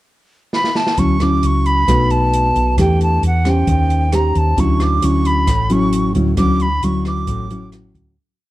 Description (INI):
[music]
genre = bossa nova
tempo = 133 BPM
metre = 4/4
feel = straight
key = D major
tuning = A4 = 439 Hz
[part]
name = silver concert flute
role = melody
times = 0.5-7.7 s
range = F#5 to D6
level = -19 LUFS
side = right 1 dB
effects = none
[part]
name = open jazz drum kit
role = drums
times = 0.5-8.1 s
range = hi-hat, kick drum, rim click, snare drum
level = -23 LUFS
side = equal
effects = none
[part]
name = nylon-string guitar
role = accompaniment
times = 1.0-8.2 s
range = A2 to C5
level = -18 LUFS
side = left 1 dB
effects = none
[part]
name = hollow-body short-scale fingered electric bass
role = bass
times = 1.0-8.2 s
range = A1 to E2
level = -17 LUFS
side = equal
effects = none
[sound]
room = light reverb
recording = dark, warm production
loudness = -13 LUFS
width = side -16 dB against mid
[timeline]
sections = 0.0-1.0 pickup bar; 1.0-8.2 A section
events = drum fill 0.5-1.0; fade-out 6.4-8.2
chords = 0.0 N.C.; 1.0 Dmaj9; 1.9 B7; 2.8 Em7; 3.7 Eb6; 4.6 Dmaj9